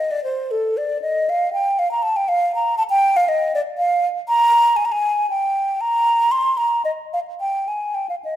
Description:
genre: classical, baroque-style fantasia for unaccompanied flute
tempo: 118 BPM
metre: 3/4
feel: uneven beats, rubato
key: unclear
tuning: A4 = 441 Hz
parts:
  - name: mellow hollow concert flute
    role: solo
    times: 0.0-8.4 s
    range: A4 to C6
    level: -17 LUFS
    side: equal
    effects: none
room: moderate recital hall reverb, RT60 1.6 s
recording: none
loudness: -17 LUFS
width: side -12 dB against mid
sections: 0.0-8.4 A section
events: none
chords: none

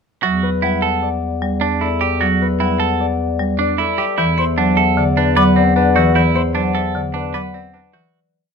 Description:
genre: classical, minimalist pattern music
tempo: 152 BPM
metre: 5/4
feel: straight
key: E minor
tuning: A4 = 440 Hz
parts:
  - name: concert harp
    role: melody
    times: 0.2-8.1 s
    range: A4 to F#5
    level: -20 LUFS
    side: left 10 dB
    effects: none
  - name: marimba with hard mallets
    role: accompaniment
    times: 0.2-8.2 s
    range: D3 to B3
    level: -20 LUFS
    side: right 2 dB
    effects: none
  - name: semi-hollow electric guitar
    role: arpeggios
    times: 0.2-8.2 s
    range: C4 to B4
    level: -20 LUFS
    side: right 11 dB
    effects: none
  - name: mellow bass clarinet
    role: bass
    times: 0.2-8.0 s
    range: E2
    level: -21 LUFS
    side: left 1 dB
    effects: none
  - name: hollow concert flute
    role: arpeggios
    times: 4.4-7.4 s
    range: C6 to D6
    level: -22 LUFS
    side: left 2 dB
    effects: none
room: light reverb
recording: close, detailed microphones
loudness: -14 LUFS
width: side -6 dB against mid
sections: 0.2-8.1 A section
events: fade-out 6.2-8.1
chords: 0.2 Em9; 4.2 D13/E

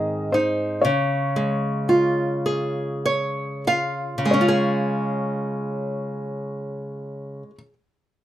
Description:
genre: children's music, lullaby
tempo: 29-42 BPM (dotted quarters)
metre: 6/8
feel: straight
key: Db major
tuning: A4 = 440 Hz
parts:
  - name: felt-muted upright piano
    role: melody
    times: 0.0-7.6 s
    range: C5 to Eb5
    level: -27 LUFS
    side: left 2 dB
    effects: none
  - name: nylon-string guitar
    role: accompaniment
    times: 0.0-7.7 s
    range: Ab2 to F5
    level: -22 LUFS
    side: right 1 dB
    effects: none
room: moderate studio ambience, RT60 0.5 s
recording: rough home demo mix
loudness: -21 LUFS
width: side -12 dB against mid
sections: 0.0-4.3 A section; 4.3-8.2 B section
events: slowing down 0.0-4.3; nylon-string guitar fill 2.4-4.3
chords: 0.0 Ab; 0.8 Db

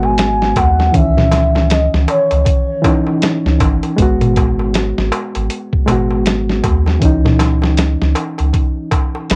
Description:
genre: trip hop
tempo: 79 BPM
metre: 4/4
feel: swing 60% on 16ths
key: unclear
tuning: A4 = 443 Hz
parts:
  - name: pure breathy sine lead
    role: melody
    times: 0.0-2.8, 9.3-9.4 s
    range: C#5 to B5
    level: -20 LUFS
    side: equal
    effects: chorus, cassette tape, dub echo
  - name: bright reed electric piano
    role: accompaniment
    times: 0.0-9.4 s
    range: D#3 to F#4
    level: -20 LUFS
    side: equal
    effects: tremolo, vintage 12-bit sampler grit, cassette tape, tape echo
  - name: soft dub sub bass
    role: bass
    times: 0.0-9.4 s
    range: G#1 to D#2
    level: -18 LUFS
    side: equal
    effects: none
  - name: darbuka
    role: percussion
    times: 0.0-9.4 s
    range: none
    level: -24 LUFS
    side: equal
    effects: none
  - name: boom bap sampler-style drum kit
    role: drums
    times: 0.2-9.4 s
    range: hi-hat, kick drum, snare drum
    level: -19 LUFS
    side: equal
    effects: cassette tape
room: little or no reverb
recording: home recording on cassette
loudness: -14 LUFS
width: mono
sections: 0.0-9.4 A section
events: none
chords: 0.0 G#m7; 0.9 C#madd9; 4.0 G#m7; 7.0 C#madd9

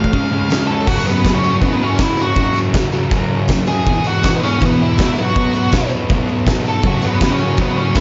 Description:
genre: garage rock duo or trio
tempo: 161 BPM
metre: 4/4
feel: straight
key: F# minor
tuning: A4 = 440 Hz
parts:
  - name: octave-fuzz lead guitar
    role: melody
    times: 0.0-8.0 s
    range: B3 to E#5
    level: -22 LUFS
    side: equal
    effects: distortion
  - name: fuzz guitar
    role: riff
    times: 0.0-8.0 s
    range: E2 to C#4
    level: -20 LUFS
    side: equal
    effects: distortion
  - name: oversized low-tuned drum kit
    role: drums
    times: 0.0-8.0 s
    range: crash cymbal, kick drum, snare drum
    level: -20 LUFS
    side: equal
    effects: vintage 12-bit sampler grit
  - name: tambourine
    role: percussion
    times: 0.5-8.0 s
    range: none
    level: -38 LUFS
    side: equal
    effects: none
room: light reverb, small room ambience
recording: nothing above 7.7 kHz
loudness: -16 LUFS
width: mono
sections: 0.9-8.0 A section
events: none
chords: 0.1 C#; 0.9 F#5; 3.9 E5; 5.2 B5; 6.8 F#5

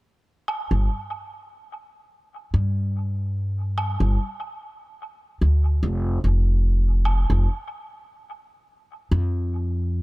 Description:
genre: ambient dub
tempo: 73 BPM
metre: 4/4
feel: swing 57% on 16ths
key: unclear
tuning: A4 = 441 Hz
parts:
  - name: woodblock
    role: drums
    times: 0.5-7.2 s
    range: none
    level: -33 LUFS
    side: right 2 dB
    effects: dub echo
  - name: upright bass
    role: bass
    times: 0.7-10.0 s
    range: F1 to G2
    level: -20 LUFS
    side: equal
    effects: none
room: little or no reverb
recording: none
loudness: -21 LUFS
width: side -21 dB against mid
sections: 0.1-10.0 A section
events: none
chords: none

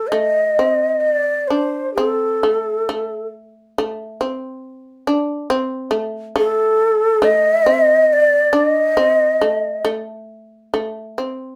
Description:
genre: japanese traditional, Japanese chamber music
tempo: 68 BPM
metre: 4/4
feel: rubato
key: unclear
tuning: A4 = 440 Hz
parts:
  - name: breathy mellow shakuhachi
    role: melody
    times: 0.0-9.9 s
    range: A4 to Eb5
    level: -17 LUFS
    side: equal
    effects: none
  - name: shamisen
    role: second line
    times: 0.0-11.6 s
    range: A3 to D4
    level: -24 LUFS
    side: equal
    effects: none
room: moderate small room reverb, RT60 0.5 s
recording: heard from further back in the room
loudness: -18 LUFS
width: mono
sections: 0.1-11.6 A section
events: none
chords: none

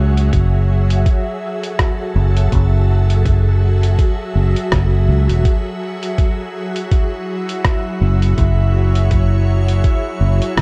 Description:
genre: ambient dub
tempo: 82 BPM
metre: 4/4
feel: swing 57% on 16ths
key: F# minor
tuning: A4 = 441 Hz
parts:
  - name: soft additive organ-like pad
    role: sustained chords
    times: 0.0-10.6 s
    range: F#3 to E5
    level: -25 LUFS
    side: equal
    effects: ensemble chorus, built-in reverb
  - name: fingered electric bass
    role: bass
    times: 0.0-10.6 s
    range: E1 to C#2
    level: -15 LUFS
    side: equal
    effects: none
  - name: lo-fi sampler-style drum kit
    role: drums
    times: 0.2-10.6 s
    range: hi-hat, rim click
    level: -26 LUFS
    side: equal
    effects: dub echo
  - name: electronic kick drum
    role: drums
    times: 0.3-10.6 s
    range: none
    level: -18 LUFS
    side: equal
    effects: none
  - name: drifting glass-harmonics texture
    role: texture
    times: 6.8-10.6 s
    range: E4 to E5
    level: -29 LUFS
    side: equal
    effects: chorus, built-in reverb
room: little or no reverb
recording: none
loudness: -16 LUFS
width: mono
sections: 0.0-10.6 A section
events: none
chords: 0.3 F#m7; 6.2 C#m/F#

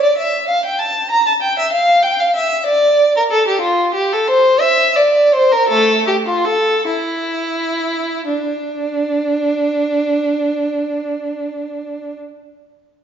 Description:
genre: classical, baroque-style suite movement for unaccompanied violin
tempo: 40-66 BPM (dotted quarters)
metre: 6/8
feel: rubato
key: D minor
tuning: A4 = 440 Hz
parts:
  - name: rich violin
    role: solo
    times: 0.0-12.2 s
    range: A3 to Bb5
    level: -14 LUFS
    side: equal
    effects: none
room: wet recital hall reverb, RT60 1.5 s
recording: heard from further back in the room, nothing above 7.5 kHz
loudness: -13 LUFS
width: side -8 dB against mid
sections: 0.0-8.3 A section; 8.3-13.0 B section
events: slowing down 2.7-8.3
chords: none

